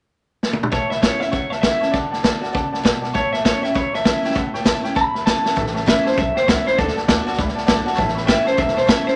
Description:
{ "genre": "rockabilly", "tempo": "198 BPM", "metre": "4/4", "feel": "swing 61% on 8ths", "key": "A major", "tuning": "A4 = 441 Hz", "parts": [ { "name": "vintage drum kit", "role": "drums", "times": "0.4-9.1 s", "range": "hi-hat, kick drum, snare drum, toms", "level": "-22 LUFS", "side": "equal", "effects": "none" }, { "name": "electric guitar through a small old amp", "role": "melody", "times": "0.7-9.2 s", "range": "A4 to B5", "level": "-22 LUFS", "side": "equal", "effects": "none" }, { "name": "clear upright piano", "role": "accompaniment", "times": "0.7-9.1 s", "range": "C#5 to B5", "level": "-29 LUFS", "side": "equal", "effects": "none" }, { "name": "picked steel-string acoustic guitar", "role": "accompaniment", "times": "0.7-9.2 s", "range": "E2 to F#4", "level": "-28 LUFS", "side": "equal", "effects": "none" }, { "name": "upright bass", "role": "bass", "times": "5.6-9.1 s", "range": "E1 to D2", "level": "-30 LUFS", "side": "equal", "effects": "none" } ], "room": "moderate club reverb, RT60 0.6 s", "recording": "nothing above 10.6 kHz", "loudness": "-19 LUFS", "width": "mono", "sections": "0.7-5.6 A section; 5.6-9.2 B section", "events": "drum fill 0.4-0.7, 5.4", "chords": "0.0 N.C.; 0.7 A; 1.9 D; 3.1 A; 6.8 D; 8.0 A", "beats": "0.12 0.42 | 0.72 1.03 1.33 1.63 | 1.93 2.24 2.54 2.84 | 3.15 3.45 3.75 4.05 | 4.36 4.66 4.96 5.26 | 5.56 5.87 6.17 6.47 | 6.77 7.07 7.38 7.68 | 7.98 8.28 8.58 8.88" }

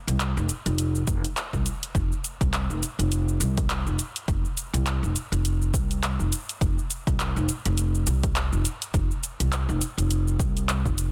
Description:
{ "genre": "organic downtempo", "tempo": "103 BPM", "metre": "4/4", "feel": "swing 58% on 16ths", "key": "unclear", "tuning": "A4 = 442 Hz", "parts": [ { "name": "upright bass", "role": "bass", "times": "0.1-11.1 s", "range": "F1 to C2", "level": "-27 LUFS", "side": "equal", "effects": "tube saturation, sidechain pumping" }, { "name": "deep house drum kit", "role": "drums", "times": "0.1-11.1 s", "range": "handclaps, hi-hat, shaker", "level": "-33 LUFS", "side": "equal", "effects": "overdrive" }, { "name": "electronic kick drum", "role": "drums", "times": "1.1-11.0 s", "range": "none", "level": "-30 LUFS", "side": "equal", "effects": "overdrive" } ], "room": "digital ambience", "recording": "dense, heavily limited modern master", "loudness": "-26 LUFS", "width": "mono", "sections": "0.0-11.1 A section", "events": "none", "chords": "none", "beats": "0.20 0.79 1.37 | 1.95 2.53 3.12 3.70 | 4.28 4.86 5.45 6.03 | 6.61 7.19 7.78 8.36 | 8.94 9.52 10.11 10.69" }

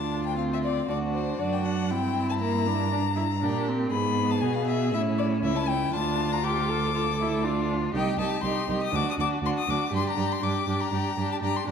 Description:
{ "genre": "quick classical-period movement for string quartet", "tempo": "119 BPM", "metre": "4/4", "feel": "rubato", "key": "D minor, G minor from 7.9 s", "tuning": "A4 = 440 Hz", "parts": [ { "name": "clear violin", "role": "melody", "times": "0.0-11.7 s", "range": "C5 to Eb6", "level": "-30 LUFS", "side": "left 9 dB", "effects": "none" }, { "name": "rich violin", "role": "second line", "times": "0.0-11.7 s", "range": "D4 to A4", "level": "-32 LUFS", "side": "left 3 dB", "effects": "none" }, { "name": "rich viola", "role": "accompaniment", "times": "0.0-11.7 s", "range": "Bb3 to F4", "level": "-30 LUFS", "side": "right 3 dB", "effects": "none" }, { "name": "rich cello", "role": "bass", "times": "0.0-11.7 s", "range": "C2 to B2", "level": "-29 LUFS", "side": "right 4 dB", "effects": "none" } ], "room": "wet scoring stage reverb, RT60 1.7 s", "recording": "dark, warm production", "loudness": "-24 LUFS", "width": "side -7 dB against mid", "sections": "0.0-11.7 A section", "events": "none", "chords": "0.0 Dm; 0.9 D; 1.9 Gm; 3.9 G#m; 4.9 A; 5.9 Dm; 7.9 Cm6; 8.9 D; 9.9 Gm", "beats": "0.39 0.90 1.40 | 1.91 2.42 2.92 3.43 | 3.93 4.43 4.93 5.44 | 5.94 6.44 6.95 7.44 | 7.94 8.44 8.93 9.43 | 9.92 10.42 10.92 11.42" }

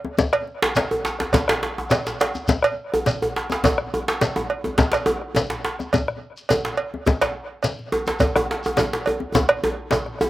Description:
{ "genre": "west african traditional, West African drum ensemble", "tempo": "105 BPM", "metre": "4/4", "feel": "straight", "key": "none", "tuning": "none", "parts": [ { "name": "djembe", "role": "percussion", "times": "0.0-10.3 s", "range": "none", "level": "-22 LUFS", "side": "left 3 dB", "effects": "none" }, { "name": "bombo", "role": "percussion", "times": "0.2-10.3 s", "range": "none", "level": "-26 LUFS", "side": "left 2 dB", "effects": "slapback echo" }, { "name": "shekere", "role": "percussion", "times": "0.2-10.3 s", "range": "none", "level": "-29 LUFS", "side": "left 1 dB", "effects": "none" }, { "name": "cowbell", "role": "percussion", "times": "0.3-10.1 s", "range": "none", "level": "-24 LUFS", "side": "right 4 dB", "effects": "slapback echo" }, { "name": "djembe", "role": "percussion", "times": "0.6-10.3 s", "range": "none", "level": "-22 LUFS", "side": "right 1 dB", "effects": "none" } ], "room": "little or no reverb", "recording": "recorded outdoors, with no room sound", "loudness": "-20 LUFS", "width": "side -15 dB against mid", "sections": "0.0-10.3 A section", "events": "drum fill 9.3-10.3", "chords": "none", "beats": "| 0.19 0.76 1.34 1.92 | 2.49 3.06 3.64 4.21 | 4.79 5.36 5.93 6.50 | 7.07 7.64 8.21 8.78 | 9.35 9.92" }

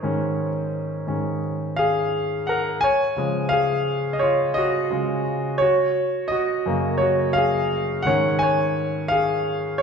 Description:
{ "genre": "pop", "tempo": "86 BPM", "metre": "4/4", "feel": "straight", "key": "Db major", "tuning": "A4 = 439 Hz", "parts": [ { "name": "clear concert grand piano", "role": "solo", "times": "0.0-9.8 s", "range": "Gb2 to Ab5", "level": "-20 LUFS", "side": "equal", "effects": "none" } ], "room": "wet recital hall reverb, RT60 1.4 s", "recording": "recorded in a church or concert hall, nothing above 8.0 kHz", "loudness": "-20 LUFS", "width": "side -6 dB against mid", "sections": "0.0-2.8 A section; 2.8-9.8 B section", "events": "grand piano solo 0.0-2.8, 2.8-9.8", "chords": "0.0 Absus4; 2.8 Db; 5.6 Gbadd9; 8.1 Absus4", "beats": "| 0.02 0.72 1.42 2.12 | 2.82 3.52 4.22 4.92 | 5.62 6.32 7.01 7.71 | 8.41 9.11 9.81" }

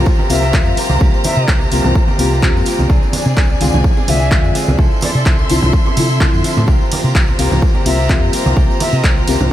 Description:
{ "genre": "filtered disco house", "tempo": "127 BPM", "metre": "4/4", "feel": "swing 54% on 16ths", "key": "C mixolydian", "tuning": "A4 = 440 Hz", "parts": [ { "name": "dark baby grand piano", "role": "accompaniment", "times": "0.0-9.5 s", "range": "C3 to F4", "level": "-21 LUFS", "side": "left 3 dB", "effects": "phaser, sidechain pumping" }, { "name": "rich studio violin section", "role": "sustained chords", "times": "0.0-9.5 s", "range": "C5 to C6", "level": "-22 LUFS", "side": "left 1 dB", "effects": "sidechain pumping" }, { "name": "direct-recorded clean electric guitar", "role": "riff", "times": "0.0-9.5 s", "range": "F3 to A4", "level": "-25 LUFS", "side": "right 5 dB", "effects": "sidechain pumping" }, { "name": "hollow-body short-scale fingered electric bass", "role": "bass", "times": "0.0-9.5 s", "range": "C2 to C3", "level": "-16 LUFS", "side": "equal", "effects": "sidechain pumping" }, { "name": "electronic kick drum", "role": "drums", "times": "0.1-9.1 s", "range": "none", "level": "-14 LUFS", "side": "equal", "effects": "overdrive, small room ambience" }, { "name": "tambourine and congas", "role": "percussion", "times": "0.1-9.5 s", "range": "none", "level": "-24 LUFS", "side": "right 2 dB", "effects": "sidechain pumping on perc" }, { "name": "bright reedy jazz flute", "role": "melody", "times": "0.3-9.2 s", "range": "D5 to E5", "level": "-25 LUFS", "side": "left 2 dB", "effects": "sidechain pumping, ping-pong delay" }, { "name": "punchy analog drum machine", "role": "drums", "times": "0.3-9.4 s", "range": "handclaps, hi-hat, ride cymbal", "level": "-22 LUFS", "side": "equal", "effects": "sidechain pumping on hats, small room ambience, sidechain pumping on cymbals" } ], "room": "light reverb, small room reverb", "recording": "none", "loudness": "-11 LUFS", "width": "side -12 dB against mid", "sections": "0.0-9.5 A section", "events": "none", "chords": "0.0 C7sus4; 2.9 Fm6/C; 4.8 Dm9/C; 6.7 C7sus4", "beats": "0.07 0.54 | 1.01 1.48 1.96 2.43 | 2.90 3.37 3.85 4.32 | 4.79 5.26 5.73 6.21 | 6.68 7.15 7.62 8.10 | 8.57 9.04 9.51" }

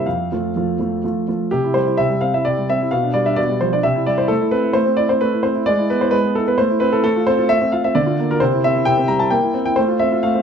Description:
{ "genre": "classical-period piano sonatina", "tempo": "131 BPM", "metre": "3/4", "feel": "straight", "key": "C major, F major from 7.0 s", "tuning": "A4 = 442 Hz", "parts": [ { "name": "warm concert grand piano", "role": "solo", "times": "0.0-10.4 s", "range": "F2 to Bb5", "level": "-15 LUFS", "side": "equal", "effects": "none" } ], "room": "moderate recital hall reverb, RT60 1.3 s", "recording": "close, detailed microphones", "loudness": "-15 LUFS", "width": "side -7 dB against mid", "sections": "0.0-1.5 A section; 1.5-10.4 B section", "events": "none", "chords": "0.1 F; 1.5 C; 2.9 G7/B; 3.8 C; 4.3 Am; 5.7 E/G#; 6.6 Am; 7.0 F/A; 8.0 Bb/D; 8.4 C; 9.3 C7/Bb; 9.8 F/A", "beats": "| 0.06 0.55 1.03 | 1.52 1.99 2.45 | 2.91 3.38 3.85 | 4.31 4.76 5.22 | 5.67 6.13 6.59 | 7.04 7.49 7.95 | 8.41 8.87 9.32 | 9.78 10.23" }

